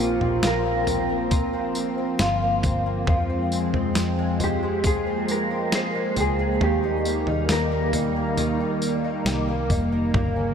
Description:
dream pop; 68 BPM; 4/4; straight; A4 = 440 Hz
mellow electric guitar; melody; 0.0-9.2 s; F4 to C5; -27 LUFS; right 2 dB; wide subtle chorus, analog delay
phased analog pad; sustained chords; 0.0-10.5 s; Db3 to C4; -26 LUFS; equal; phaser, chorus
fingerpicked twelve-string acoustic guitar; arpeggios; 0.0-10.5 s; Eb3 to Ab4; -28 LUFS; left 2 dB; ensemble chorus, analog delay
vintage muted picked electric bass; bass; 0.0-10.5 s; F1 to F2; -28 LUFS; left 1 dB
dusty soul sampler-style drum kit; drums; 0.2-10.3 s; kick drum, snare drum, tambourine, toms; -27 LUFS; equal
wet cathedral reverb, RT60 5.9 s; dreamy mix soaked in reverb; -21 LUFS; side -7 dB against mid
0.0-10.5 A section
0.0 Bbsus2; 3.1 Fm; 6.6 Eb

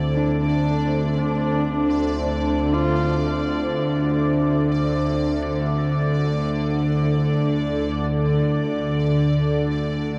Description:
dark ambient drone; free time; A4 = 440 Hz
deep dark ambient pad; sustained chords; 0.0-10.2 s; D4 to E5; -27 LUFS; equal; chorus, built-in reverb, shimmer reverb
bowed-like drone; drone; 0.0-10.2 s; D2 to D3; -24 LUFS; equal; built-in reverb
bubbling stepped-filter texture; texture; 0.0-10.2 s; D5; -35 LUFS; equal; chorus, built-in reverb, shimmer reverb
warm horsehead fiddle; melody; 0.1-3.3 s; D4 to F4; -30 LUFS; equal; shimmer reverb, tape echo
wet huge ambient reverb, RT60 8.9 s; worn, warbling old tape, cassette tape, warbly pitch drift, faint mains hum; -21 LUFS; mono
0.0-10.2 A section
0.0 Dsus2

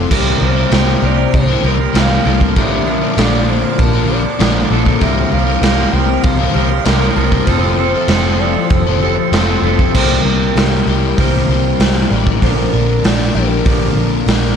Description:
rock, shoegaze and dream pop; 97 BPM; 4/4; straight; C mixolydian; A4 = 440 Hz
pure breathy sine lead; melody; 0.0-14.6 s; A4 to G5; -23 LUFS; right 4 dB; chorus, analog delay
string machine, full ensemble; sustained chords; 0.0-14.6 s; Bb3 to D6; -26 LUFS; right 1 dB; ensemble chorus
fingerpicked twelve-string acoustic guitar; arpeggios; 0.0-14.6 s; F4 to A5; -26 LUFS; left 11 dB; analog chorus, analog delay
crunchy overdriven guitar; riff; 0.0-14.6 s; Bb2 to Bb4; -18 LUFS; left 12 dB; analog chorus
twangy electric guitar; riff; 0.0-14.6 s; Bb2 to Bb4; -21 LUFS; right 14 dB; reverse reverb
vintage muted picked electric bass; bass; 0.0-14.5 s; F1 to C2; -17 LUFS; right 1 dB
raw garage drum kit; drums; 0.1-14.4 s; crash cymbal, hi-hat, kick drum, snare drum; -16 LUFS; right 1 dB
small room ambience; dark, warm production; -11 LUFS; side -7 dB against mid
0.1-9.9 A section; 9.9-14.6 B section
0.1 C7sus4; 2.6 Bbmaj7; 5.0 C7sus4; 7.5 Fmaj7; 9.9 C7sus4; 12.4 Bbmaj7

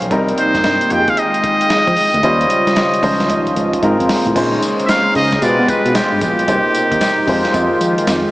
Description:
R&B, new jack swing; 113 BPM; 4/4; swing 65% on 16ths; Bb dorian; A4 = 440 Hz
warm concert grand piano; accompaniment; 0.0-8.3 s; F3 to Ab5; -18 LUFS; left 1 dB
tine electric piano; bass; 0.0-8.2 s; Bb1 to B3; -20 LUFS; equal; medium tremolo
dusty soul sampler-style drum kit; drums; 0.0-8.2 s; crash cymbal, hi-hat, kick drum, snare drum, tambourine; -22 LUFS; equal; overdrive, vintage 12-bit sampler grit
sweeping resonant pad; sustained chords; 0.1-8.3 s; B2 to G5; -21 LUFS; right 1 dB; chorus
cowbell; percussion; 0.1-8.2 s; -28 LUFS; right 2 dB
trumpet with metal mute; melody; 0.4-8.3 s; G4 to G5; -16 LUFS; equal
wet huge ambient reverb, RT60 4.0 s; dreamy mix soaked in reverb, small speaker sound; -12 LUFS; side -18 dB against mid
0.0-4.4 A section; 4.4-8.3 B section
drum fill 3.3-4.4
0.1 Cm7; 0.9 Fm9; 2.2 Eb13; 3.0 Dbmaj9; 3.8 Ab69; 4.4 Bbm11; 5.4 G7b9/B; 6.5 Cm7; 7.3 Fm7

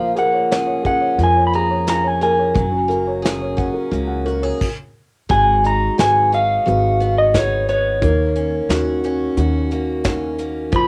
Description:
acoustic folk-pop ballad; 88 BPM; 4/4; straight; G# dorian; A4 = 438 Hz
electric guitar through a small old amp; melody; 0.0-10.9 s; C#5 to B5; -20 LUFS; equal; harmonic tremolo, cassette tape
warm upright piano; accompaniment; 0.0-10.9 s; D#3 to F#5; -26 LUFS; equal; cassette tape
picked acoustic archtop guitar; arpeggios; 0.0-10.9 s; E#3 to G#4; -26 LUFS; equal; cassette tape
upright bass; bass; 0.0-10.9 s; F#1 to E#2; -24 LUFS; equal
soft brush drum kit; drums; 0.2-10.9 s; crash cymbal, hi-hat, kick drum, snare drum; -24 LUFS; equal; cassette tape
moderate studio reverb, RT60 0.5 s; home recording on cassette; -18 LUFS; mono
0.0-5.3 A section; 5.3-10.9 B section
stop 4.6-5.3
0.0 A#m7; 2.5 F#add9; 5.3 G#m7; 8.0 D#m7

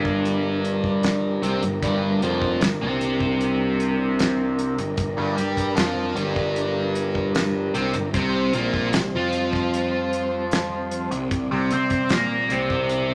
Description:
psychedelic rock; 76 BPM; 4/4; straight; G minor; A4 = 440 Hz
mellow tonewheel organ; sustained chords; 0.0-13.1 s; G3 to D5; -30 LUFS; equal; slow rotary speaker
cranked stack guitar; riff; 0.0-13.1 s; F2 to C5; -26 LUFS; equal; overdrive, phaser
fuzz picked electric bass; bass; 0.0-13.1 s; F1 to C3; -31 LUFS; equal; overdrive
damped 70s drum kit; drums; 0.1-13.1 s; hi-hat, kick drum, snare drum; -29 LUFS; equal
tambourine; percussion; 1.0-12.3 s; -48 LUFS; equal
moderate large studio reverb, RT60 1.0 s; -23 LUFS; mono
0.0-13.1 A section
0.0 Gm; 8.1 C5

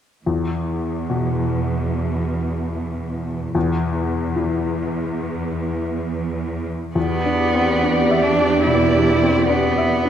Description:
cinematic; 66-74 BPM; 4/4; rubato; A4 = 440 Hz
felt-muted upright piano; accompaniment; 0.3-10.1 s; E2 to E5; -22 LUFS; left 3 dB
rich symphonic cello section; bass; 0.3-10.1 s; E2; -24 LUFS; right 2 dB
clear cello; melody; 7.0-10.1 s; B3 to E4; -19 LUFS; right 2 dB
warm symphonic viola section; accompaniment; 7.0-10.1 s; G4 to D5; -21 LUFS; right 1 dB
wet scoring stage reverb, RT60 1.9 s; heard from further back in the room; -18 LUFS; side -9 dB against mid
0.3-7.0 A section; 7.0-10.1 B section
0.3 E5; 3.6 N.C.; 7.0 Em7

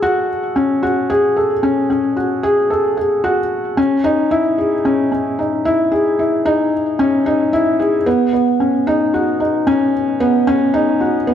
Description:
electronica; 112 BPM; 4/4; straight; C# minor; A4 = 436 Hz
felt-muted upright piano; solo; 0.0-11.3 s; B3 to A4; -14 LUFS; left 1 dB
wet echo chamber reverb, RT60 1.4 s; -14 LUFS; side -9 dB against mid
0.0-11.3 A section
build-up 0.0-11.3

